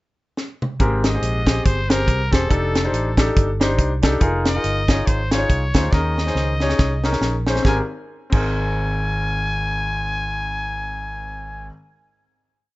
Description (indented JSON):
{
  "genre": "uptempo gospel",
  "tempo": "140 BPM",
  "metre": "4/4",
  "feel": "swing 58% on 8ths",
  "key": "Ab major",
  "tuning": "A4 = 440 Hz",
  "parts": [
    { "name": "tight funk drum kit", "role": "drums", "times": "0.4-8.4 s", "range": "crash cymbal, hi-hat, kick drum, snare drum, toms", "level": "-19 LUFS", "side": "equal", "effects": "none" },
    { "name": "warm grand piano", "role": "accompaniment", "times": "0.8-11.7 s", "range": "Ab1 to Db5", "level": "-24 LUFS", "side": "left 1 dB", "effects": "plate reverb" },
    { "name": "fingered electric bass", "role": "bass", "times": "0.8-11.7 s", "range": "Fb1 to Eb2", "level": "-23 LUFS", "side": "equal", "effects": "none" },
    { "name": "growling trumpet", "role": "melody", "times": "1.1-11.7 s", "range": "A4 to Ab5", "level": "-26 LUFS", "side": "left 1 dB", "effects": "plate reverb" }
  ],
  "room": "light reverb",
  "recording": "rough home demo mix, nothing above 7.8 kHz",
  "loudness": "-17 LUFS",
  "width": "side -19 dB against mid",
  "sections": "0.0-0.8 pickup bar; 0.8-7.6 breakdown; 7.6-11.1 final chord",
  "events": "drum fill 0.4-0.8, 5.9-7.6",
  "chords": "0.0 N.C.; 0.8 Abmaj9; 2.5 F13; 4.2 Bb7sus4/F; 5.9 Eb7sus4; 7.6 Abadd9",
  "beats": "0.38 | 0.80 1.23 1.66 2.08 | 2.51 2.93 3.36 3.79 | 4.21 4.64 5.07 5.50 | 5.93 6.36 6.79 7.22 | 7.65 8.08 8.51 8.94 | 9.38 9.81 10.24 10.67"
}